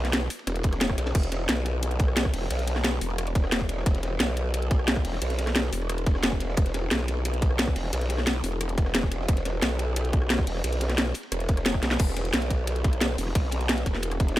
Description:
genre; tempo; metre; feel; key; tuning
dark technical drum and bass; 177 BPM; 4/4; straight; unclear; A4 = 442 Hz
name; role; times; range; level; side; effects
growl bass; bass; 0.0-14.4 s; E1 to B1; -27 LUFS; equal; chorus, tube saturation, sidechain pumping
drum and bass drum kit; drums; 0.0-14.4 s; crash cymbal, hi-hat, rim click, snare drum; -28 LUFS; equal; overdrive
crunchy breakbeat drum kit; drums; 0.1-14.4 s; hi-hat, ride cymbal, snare drum; -37 LUFS; equal; high-pass filter on cymbals, high-pass filter on hats, high-pass filter on snare, high-pass filter on room
electronic kick drum; drums; 0.6-14.3 s; none; -24 LUFS; equal; overdrive
room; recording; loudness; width
small room ambience; none; -23 LUFS; side -15 dB against mid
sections
0.0-12.0 A section; 12.0-14.4 A section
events
drop 0.0-12.0, 12.0-14.4; drum fill 11.8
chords
none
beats
0.13 0.47 0.81 | 1.15 1.49 1.83 2.17 | 2.50 2.84 3.18 3.52 | 3.86 4.20 4.54 4.88 | 5.22 5.56 5.89 6.23 | 6.57 6.91 7.25 7.59 | 7.93 8.27 8.61 8.95 | 9.29 9.62 9.96 10.30 | 10.64 10.98 11.32 11.66 | 12.00 12.34 12.68 13.01 | 13.35 13.69 14.03 14.37

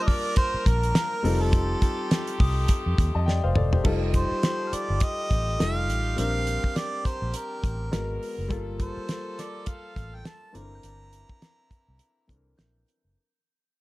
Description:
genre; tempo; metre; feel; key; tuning
lush 1970s-style soul; 103 BPM; 4/4; swing 58% on 16ths; unclear; A4 = 439 Hz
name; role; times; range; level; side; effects
warm harmonica; melody; 0.0-12.6 s; A4 to Bb5; -31 LUFS; right 2 dB; analog delay
clear baby grand piano; accompaniment; 0.0-13.2 s; E3 to A5; -32 LUFS; left 3 dB; none
muted French horn section; sustained chords; 0.0-13.1 s; D3 to Bb4; -38 LUFS; equal; none
damped 70s drum kit; drums; 0.1-13.0 s; crash cymbal, hi-hat, kick drum, snare drum, toms; -24 LUFS; equal; none
glockenspiel with hard plastic mallets; texture; 0.1-13.1 s; Bb5 to G6; -41 LUFS; left 4 dB; none
vintage muted fingered electric bass; bass; 0.5-13.1 s; E1 to F2; -27 LUFS; equal; none
room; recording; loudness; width
studio reverb; dark, warm production; -23 LUFS; side -19 dB against mid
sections
0.0-3.9 A section; 3.9-13.2 B section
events
drum fill 3.3-3.9; fade-out 3.9-13.2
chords
0.0 Gm9; 1.2 F9; 6.2 Bb69; 7.9 Abm9; 8.5 Gm9; 10.5 C9/G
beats
0.37 0.95 | 1.53 2.11 2.69 3.27 | 3.85 4.43 5.01 5.60 | 6.18 6.76 7.34 7.92 | 8.50 9.09 9.67 10.25 | 10.83 11.41 12.00 12.58

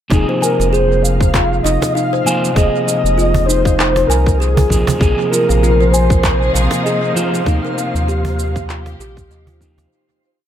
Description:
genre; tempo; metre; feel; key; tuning
organic downtempo; 98 BPM; 4/4; swing 57% on 16ths; F minor; A4 = 440 Hz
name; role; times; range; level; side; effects
breathy flute-like synth lead; melody; 0.1-9.6 s; Ab4 to F5; -18 LUFS; left 1 dB; ensemble chorus, analog delay, shimmer reverb
electric guitar at the edge of break-up; accompaniment; 0.1-9.9 s; C3 to C5; -21 LUFS; right 2 dB; sidechain pumping, tape echo, shimmer reverb
kalimba; arpeggios; 0.1-9.9 s; Eb4 to Ab5; -21 LUFS; left 1 dB; analog delay, shimmer reverb
warm sub bass; bass; 0.1-9.9 s; F1 to Eb2; -17 LUFS; equal; sidechain pumping
electronic kick drum; drums; 0.1-9.7 s; none; -15 LUFS; equal; none
electronic shaker and handclaps; drums; 0.1-9.9 s; none; -22 LUFS; right 2 dB; tape echo
cajon; percussion; 0.1-9.9 s; none; -22 LUFS; right 3 dB; tape echo
clear studio string section; sustained chords; 5.0-9.9 s; C3 to Ab4; -24 LUFS; right 1 dB; sidechain pumping, shimmer reverb
twinkling granular texture; texture; 5.0-9.9 s; C5; -28 LUFS; equal; built-in reverb, shimmer reverb
room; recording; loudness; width
moderate spring reverb, RT60 1.6 s, digital ambience; echo-heavy mix; -12 LUFS; side -10 dB against mid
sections
0.1-9.9 groove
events
fade-out 6.6-9.9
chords
0.1 Fm7; 5.0 Bbsus2; 7.5 Eb69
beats
| 0.12 0.73 1.34 1.95 | 2.56 3.18 3.79 4.40 | 5.01 5.62 6.24 6.85 | 7.46 8.07 8.69 9.30

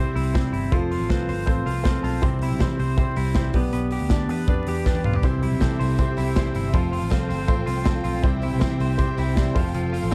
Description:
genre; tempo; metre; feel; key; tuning
jangly indie pop; 160 BPM; 4/4; straight; unclear; A4 = 440 Hz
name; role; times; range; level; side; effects
clear upright piano; accompaniment; 0.0-10.1 s; D4 to A5; -34 LUFS; equal; none
picked steel-string acoustic guitar; accompaniment; 0.0-10.1 s; C3 to C5; -34 LUFS; equal; none
twelve-string electric guitar; arpeggios; 0.0-10.1 s; C3 to C5; -29 LUFS; equal; none
vintage muted picked electric bass; bass; 0.0-10.1 s; F1 to F2; -29 LUFS; equal; none
modern studio drum kit; drums; 0.2-10.1 s; hi-hat, kick drum, snare drum, toms; -26 LUFS; equal; none
warm studio string section; sustained chords; 5.2-10.1 s; C4 to G5; -38 LUFS; equal; none
tambourine; percussion; 5.2-10.1 s; none; -53 LUFS; equal; none
room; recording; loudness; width
light reverb; dark, warm production, vinyl crackle; -23 LUFS; mono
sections
0.0-10.1 A section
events
upright piano fill 1.7-2.2; drum fill 4.9-5.2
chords
0.0 C; 0.7 F; 2.2 C; 3.5 G/B; 5.2 C; 6.7 F; 8.2 C; 9.6 F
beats
0.34 | 0.72 1.10 1.47 1.85 | 2.23 2.60 2.98 3.35 | 3.73 4.11 4.48 4.86 | 5.23 5.61 5.98 6.36 | 6.74 7.11 7.49 7.86 | 8.24 8.62 8.99 9.37 | 9.74 10.12

